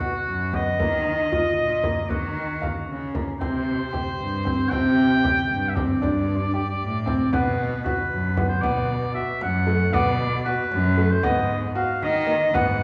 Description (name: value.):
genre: contemporary instrumental, chamber music in an uneven meter.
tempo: 230 BPM (eighths).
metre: 5/8.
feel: straight.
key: unclear.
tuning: A4 = 440 Hz.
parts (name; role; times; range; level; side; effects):
clear oboe; melody; 0.0-12.8 s; F#4 to G5; -28 LUFS; equal; none.
clear grand piano; arpeggios; 0.0-12.8 s; A3 to E#5; -28 LUFS; equal; none.
rich cello; bass; 0.0-12.8 s; F#2 to D#3; -28 LUFS; equal; none.
frame drum; percussion; 0.0-12.8 s; none; -33 LUFS; equal; none.
room: wet recital hall reverb, RT60 1.5 s.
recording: recorded in a church or concert hall, small room ambience.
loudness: -23 LUFS.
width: mono.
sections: 0.0-8.6 A section; 8.6-12.8 B section.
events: none.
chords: 0.0 B5; 0.8 D#madd9; 3.4 C5; 6.0 Gsus2; 7.3 B5; 8.6 Bm; 11.2 G#m7.